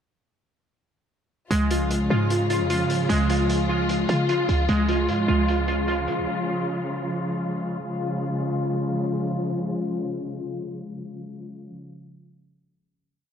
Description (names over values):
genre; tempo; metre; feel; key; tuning
hip hop, trap; 151 BPM; 4/4; half-time; Db major; A4 = 443 Hz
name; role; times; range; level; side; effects
warm symphonic string section; sustained chords; 1.5-11.7 s; Db3 to F4; -26 LUFS; left 2 dB; none
glassy digital keys; arpeggios; 1.5-7.1 s; Ab3 to F4; -24 LUFS; right 1 dB; chorus, low-pass filter, tape echo
short 808-style bass; bass; 1.5-6.3 s; C2 to F3; -26 LUFS; equal; none
hi-hat; drums; 1.5-6.2 s; none; -36 LUFS; right 1 dB; none
room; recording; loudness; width
moderate plate reverb, RT60 1.4 s, studio ambience; dreamy mix soaked in reverb, low-pass filter; -22 LUFS; side -8 dB against mid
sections
1.5-7.9 breakdown; 7.9-11.0 final chord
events
filter sweep 1.5-7.9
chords
1.5 Db